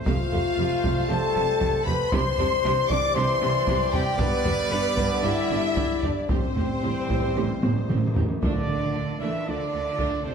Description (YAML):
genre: cinematic, epic orchestral film score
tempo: 116 BPM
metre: 4/4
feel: straight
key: D dorian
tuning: A4 = 440 Hz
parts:
  - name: warm symphonic violin section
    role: melody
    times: 0.0-10.3 s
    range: B4 to D6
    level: -35 LUFS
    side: left 3 dB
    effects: none
  - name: clear trombone section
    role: sustained chords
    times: 0.0-9.6 s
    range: D3 to A3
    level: -35 LUFS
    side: right 3 dB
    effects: none
  - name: clear trumpet section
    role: stabs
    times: 0.0-10.3 s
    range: C5 to E5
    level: -32 LUFS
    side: right 4 dB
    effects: none
  - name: mellow large flute ensemble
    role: second line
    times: 0.1-8.1 s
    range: B4 to D6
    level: -32 LUFS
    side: right 1 dB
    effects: none
  - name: warm symphonic violin section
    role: second line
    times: 0.1-10.3 s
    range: F4 to D6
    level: -34 LUFS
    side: left 1 dB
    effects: none
  - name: warm symphonic viola section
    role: accompaniment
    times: 0.1-10.3 s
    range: A3 to G4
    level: -35 LUFS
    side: right 3 dB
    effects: none
  - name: mellow French horn section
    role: sustained chords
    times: 0.1-10.3 s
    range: B3 to D5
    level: -28 LUFS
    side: left 6 dB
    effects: none
  - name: warm symphonic cello section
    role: bass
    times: 0.1-10.3 s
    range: F2 to E3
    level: -32 LUFS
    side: right 4 dB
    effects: none
  - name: warm symphonic double bass section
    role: bass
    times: 0.1-10.3 s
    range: F1 to D2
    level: -31 LUFS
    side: right 3 dB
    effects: none
  - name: solo taiko drums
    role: drums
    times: 0.1-10.3 s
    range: none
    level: -28 LUFS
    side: equal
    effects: none
  - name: timpani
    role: percussion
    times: 6.3-8.4 s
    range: A2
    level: -30 LUFS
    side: right 1 dB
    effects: none
room: wet scoring stage reverb, RT60 1.8 s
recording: none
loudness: -22 LUFS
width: side -6 dB against mid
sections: 0.0-8.4 A section; 8.4-10.3 B section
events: timpani fill 6.3-8.4; drum fill 7.6-8.4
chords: 0.1 Fadd9; 2.1 Cadd9; 4.2 G; 6.3 Am7; 8.4 Dm